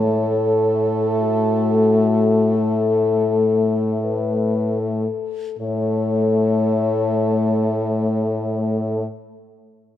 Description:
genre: classical, lyrical piece for horn quartet.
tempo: 37-46 BPM.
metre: 4/4.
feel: rubato.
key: A major.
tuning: A4 = 440 Hz.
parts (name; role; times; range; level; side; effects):
dark French horn; melody; 0.0-9.1 s; F#4 to C#5; -25 LUFS; left 9 dB; none.
warm French horn; second line; 0.0-9.1 s; A4; -24 LUFS; right 4 dB; none.
mellow French horn; accompaniment; 0.0-9.0 s; A3; -21 LUFS; left 3 dB; none.
warm French horn; bass; 0.0-9.1 s; A2; -22 LUFS; right 1 dB; none.
room: light reverb.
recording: close, detailed microphones.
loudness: -17 LUFS.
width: side -11 dB against mid.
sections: 0.0-5.6 A section; 5.6-10.0 B section.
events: slowing down 0.0-5.6.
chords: 0.0 N.C.; 5.6 A.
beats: 1.16 2.54 4.02 | 5.59 7.15 8.66.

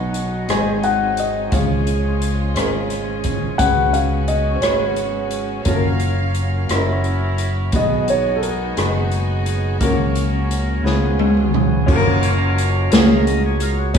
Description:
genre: slow gospel.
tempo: 58 BPM (dotted quarters).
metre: 6/8.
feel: straight.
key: F# major.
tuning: A4 = 440 Hz.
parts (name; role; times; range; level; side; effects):
dark grand piano; melody; 0.0-11.2 s; G#4 to G#5; -22 LUFS; left 2 dB; none.
warm grand piano; accompaniment; 0.0-14.0 s; G#2 to C#5; -24 LUFS; left 2 dB; none.
clear studio string section; sustained chords; 0.0-11.9 s; E#3 to E#5; -31 LUFS; right 1 dB; none.
overdriven tonewheel organ; sustained chords; 0.0-14.0 s; E#3 to E#5; -27 LUFS; right 3 dB; slow rotary speaker.
fingered electric bass; bass; 0.0-14.0 s; F#1 to C#2; -20 LUFS; equal; none.
swinging big-band drum kit; drums; 0.1-14.0 s; crash cymbal, hi-hat, kick drum, rim click, snare drum, toms; -20 LUFS; equal; none.
room: moderate stone room reverb, RT60 1.1 s.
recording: band playing live in one room, small room ambience.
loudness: -16 LUFS.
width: side -7 dB against mid.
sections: 0.0-11.9 A section; 11.9-14.0 B section.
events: drum fill 10.8-11.9.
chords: 0.5 G#7; 1.5 C#; 3.6 C#7sus4; 5.7 F#maj7; 6.7 F#7; 7.7 B6; 9.8 F#/C#; 10.8 C#7; 11.9 F#maj7.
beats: 0.49 | 1.53 2.56 | 3.60 4.63 | 5.67 6.70 | 7.74 8.77 | 9.81 10.85 | 11.88 12.91 | 13.95.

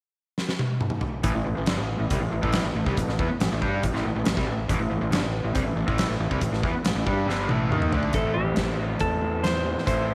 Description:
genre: classic rock.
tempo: 139 BPM.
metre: 4/4.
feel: straight.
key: A minor.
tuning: A4 = 440 Hz.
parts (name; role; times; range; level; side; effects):
huge arena drum kit; drums; 0.4-10.0 s; hi-hat, kick drum, snare drum, toms; -30 LUFS; equal; none.
overdriven electric guitar; riff; 1.2-10.1 s; G2 to G4; -34 LUFS; equal; none.
raw garage guitar; riff; 1.2-10.1 s; G2 to G4; -31 LUFS; equal; overdrive.
fuzz fingered electric bass; bass; 1.2-10.1 s; G1 to G2; -31 LUFS; equal; overdrive.
clean lap steel guitar; melody; 8.1-10.1 s; G4 to C5; -30 LUFS; equal; none.
room: moderate echo chamber reverb, RT60 1.8 s, studio reverb.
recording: none.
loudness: -25 LUFS.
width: mono.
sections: 0.0-1.2 A section; 1.2-8.1 B section; 8.1-10.1 C section.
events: drum fill 0.4-1.2, 7.3-8.1.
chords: 0.0 N.C.; 1.2 Am.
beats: 0.37 0.80 | 1.23 1.67 2.10 2.53 | 2.96 3.39 3.82 4.26 | 4.69 5.12 5.55 5.98 | 6.41 6.85 7.28 7.71 | 8.14 8.57 9.01 9.44 | 9.87.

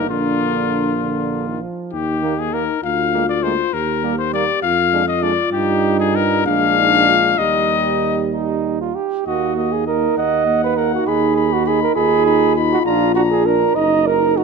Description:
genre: classical, brass quintet.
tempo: 66 BPM (dotted quarters).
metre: 6/8.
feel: rubato.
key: Eb major, Eb minor from 9.3 s.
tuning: A4 = 441 Hz.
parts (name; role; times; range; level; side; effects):
bright trumpet; melody; 0.0-14.4 s; F4 to Cb6; -20 LUFS; left 10 dB; none.
warm flugelhorn; second line; 0.0-14.4 s; Bb3 to Eb5; -20 LUFS; right 9 dB; none.
clear trombone; accompaniment; 0.0-14.4 s; D3 to Eb4; -26 LUFS; right 4 dB; none.
mellow French horn; accompaniment; 0.0-14.4 s; D4 to G4; -22 LUFS; left 4 dB; none.
warm tuba; bass; 0.0-14.4 s; Gb1 to G2; -23 LUFS; right 3 dB; none.
room: moderate scoring stage reverb, RT60 1.8 s.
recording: close, detailed microphones.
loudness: -15 LUFS.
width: side -4 dB against mid.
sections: 0.0-9.3 A section; 9.3-14.4 B section.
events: none.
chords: 0.1 Bb; 1.9 Eb; 2.8 Bb7/D; 3.7 Eb; 4.6 Ddim/F; 5.5 Eb/G; 6.5 Bb7; 7.4 Eb; 9.3 Ebm; 11.1 Abm/Eb; 12.9 Bb; 13.8 Ebm/Gb.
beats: | 0.10 1.01 | 1.93 2.83 | 3.73 4.63 | 5.52 6.46 | 7.39 8.33 | 9.27 10.17 | 11.07 11.96 | 12.86 13.76.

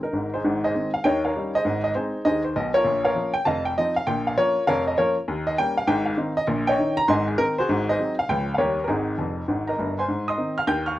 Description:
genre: jazz, stride piano.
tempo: 199 BPM.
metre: 4/4.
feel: swing 65% on 8ths.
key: Ab major.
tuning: A4 = 440 Hz.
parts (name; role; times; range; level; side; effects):
clear upright piano; solo; 0.0-11.0 s; F1 to G6; -21 LUFS; equal; none.
room: moderate studio reverb, RT60 0.6 s.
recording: worn, warbling old tape, cassette tape, warbly pitch drift.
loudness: -21 LUFS.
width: side -15 dB against mid.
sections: 0.4-10.1 A section.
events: upright piano fill 9.2-10.1.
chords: 0.4 Ab; 1.0 Eb9; 1.7 Ab; 2.9 Bbm; 3.5 F5; 4.1 Bbm; 5.3 Eb7; 5.9 Ab; 6.5 Eb7/Bb; 7.1 Ab7; 8.3 Db; 8.6 Eb7; 8.9 Ab.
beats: 0.14 | 0.45 0.75 1.05 1.35 | 1.65 1.96 2.26 2.56 | 2.86 3.16 3.46 3.77 | 4.07 4.37 4.67 4.97 | 5.27 5.57 5.87 6.17 | 6.48 6.78 7.08 7.38 | 7.68 7.98 8.28 8.58 | 8.88 9.18 9.48 9.78 | 10.08 10.38 10.69 10.99.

